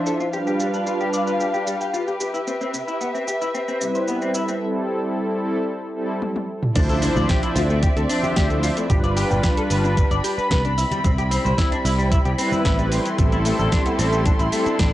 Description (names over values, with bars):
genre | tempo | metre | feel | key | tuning
nu-disco, nu disco | 112 BPM | 4/4 | straight | D dorian | A4 = 439 Hz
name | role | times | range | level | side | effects
warm analog pad | accompaniment | 0.0-14.7 s | F3 to E5 | -24 LUFS | equal | chorus, cassette tape, sidechain pumping, tape echo
muted symphonic violin section | sustained chords | 0.0-14.9 s | G3 to C6 | -26 LUFS | equal | sidechain pumping
electric guitar through a small old amp | riff | 0.1-14.9 s | C3 to G5 | -26 LUFS | left 3 dB | lush chorus, low-pass filter, tape echo
house drum kit | drums | 0.1-14.9 s | cabasa, crash cymbal, hi-hat, snare drum, toms | -28 LUFS | equal | low-pass filter on perc, small room reverb, low-pass filter on toms, low-pass filter on hats, low-pass filter on cymbals, low-pass filter on snare
picked electric bass | bass | 6.8-14.9 s | G1 to D2 | -22 LUFS | equal | sidechain pumping
electronic kick drum | drums | 6.8-14.9 s | none | -20 LUFS | equal | small room reverb
congas | percussion | 6.8-13.7 s | none | -31 LUFS | right 2 dB | none
impact | sound effects | 6.9-8.9 s | none | -32 LUFS | right 1 dB | none
room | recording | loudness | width
light reverb | home recording on cassette, nothing above 10.8 kHz | -19 LUFS | side -14 dB against mid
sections
0.0-6.8 A section; 6.8-14.9 B section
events
filter sweep on drum 0.0-6.8; filter sweep on analog synth pad 0.0-6.8; drum fill 6.2-6.8; drop 6.8-14.9; impact 6.8-8.9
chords
0.3 G7; 2.2 Cmaj7; 4.3 Am7; 6.8 Dm9; 8.9 G7; 10.8 Am7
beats
| 0.33 0.87 1.40 1.94 | 2.47 3.01 3.54 4.08 | 4.62 5.15 5.69 6.22 | 6.76 7.29 7.83 8.37 | 8.90 9.44 9.97 10.51 | 11.04 11.58 12.12 12.65 | 13.19 13.72 14.26 14.79